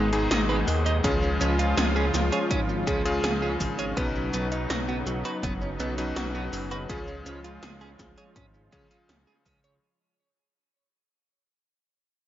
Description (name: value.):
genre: synthwave.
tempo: 82 BPM.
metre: 4/4.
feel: straight.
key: unclear.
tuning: A4 = 444 Hz.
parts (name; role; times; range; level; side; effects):
warm analog pad; sustained chords; 0.0-9.8 s; B2 to E#4; -32 LUFS; left 1 dB; chorus, sidechain pumping.
direct-recorded clean electric guitar; arpeggios; 0.0-9.8 s; E#3 to D#5; -34 LUFS; right 3 dB; spring reverb, tape echo.
clean electric guitar; riff; 0.0-9.7 s; G#3 to C#5; -35 LUFS; right 2 dB; analog chorus, tape echo.
bright electric grand piano; stabs; 0.0-9.8 s; G#2 to B4; -31 LUFS; left 2 dB; vintage 12-bit sampler grit, tape echo.
chorused synth bass; bass; 0.0-9.8 s; F#1 to D#2; -30 LUFS; equal; none.
80s electronic pad drums; drums; 0.1-9.8 s; hi-hat, shaker, snare drum; -31 LUFS; equal; gated reverb.
electronic kick drum; drums; 1.0-9.6 s; none; -32 LUFS; equal; none.
room: light reverb.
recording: nothing above 7.5 kHz.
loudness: -24 LUFS.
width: side -12 dB against mid.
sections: 0.0-9.8 A section.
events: fade-out 2.0-9.8.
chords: 0.0 G#m; 1.0 C#; 4.0 Badd9; 6.9 C#.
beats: 0.31 | 1.04 1.77 2.50 3.24 | 3.97 4.70 5.43 6.16 | 6.89 7.63 8.36 9.09.